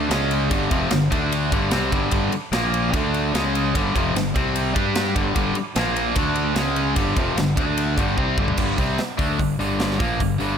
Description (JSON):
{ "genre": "hard rock", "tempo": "149 BPM", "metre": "4/4", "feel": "straight", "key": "unclear", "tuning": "A4 = 439 Hz", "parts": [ { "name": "cranked stack guitar", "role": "riff", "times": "0.0-10.6 s", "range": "F2 to G4", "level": "-24 LUFS", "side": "left 10 dB", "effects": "overdrive" }, { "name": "overdriven electric guitar", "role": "riff", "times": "0.0-10.6 s", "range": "F2 to G4", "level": "-24 LUFS", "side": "right 11 dB", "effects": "spring reverb" }, { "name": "fuzz fingered electric bass", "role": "bass", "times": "0.0-10.6 s", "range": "F1 to G2", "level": "-27 LUFS", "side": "right 1 dB", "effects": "overdrive" }, { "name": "tight metal drum kit", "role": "drums", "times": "0.1-10.5 s", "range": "crash cymbal, hi-hat, kick drum, ride cymbal, snare drum, toms", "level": "-25 LUFS", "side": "equal", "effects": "none" } ], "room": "light reverb, small room ambience", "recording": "none", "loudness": "-19 LUFS", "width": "side -7 dB against mid", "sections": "0.0-8.6 A section; 8.6-10.6 B section", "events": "drum fill 8.2-8.6", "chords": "0.1 C#5; 0.5 G5; 1.1 D5; 1.5 G5; 2.5 Bb5; 2.9 D5; 3.3 C#5; 3.7 G5; 4.4 C5; 4.8 G5; 5.8 Bb5; 6.2 D5; 6.6 C#5; 7.0 G5; 7.6 D5; 8.0 G5; 8.6 Gm" }